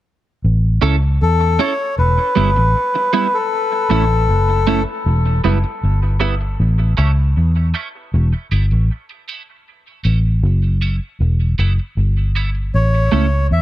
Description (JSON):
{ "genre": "dub reggae", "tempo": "78 BPM", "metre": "4/4", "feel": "straight", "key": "unclear", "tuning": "A4 = 441 Hz", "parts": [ { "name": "vintage muted fingered electric bass", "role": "bass", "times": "0.4-13.6 s", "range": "E1 to E2", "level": "-14 LUFS", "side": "equal", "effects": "none" }, { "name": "clean electric guitar", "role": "accompaniment", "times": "0.8-13.3 s", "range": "G3 to A4", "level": "-22 LUFS", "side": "right 7 dB", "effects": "analog chorus, high-pass filter, dub echo" }, { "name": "melodica", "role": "melody", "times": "1.2-4.8, 12.7-13.6 s", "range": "A4 to E5", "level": "-19 LUFS", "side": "left 2 dB", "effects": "dub echo" } ], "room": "light reverb, small room ambience", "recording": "none", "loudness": "-14 LUFS", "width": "side -14 dB against mid", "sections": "0.4-12.7 A section", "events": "filter sweep on clean electric guitar 3.5-12.7", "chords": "0.4 A; 2.0 Em; 3.5 A; 5.0 Em; 6.6 A; 8.1 Em; 9.7 A; 11.2 Em; 12.7 A" }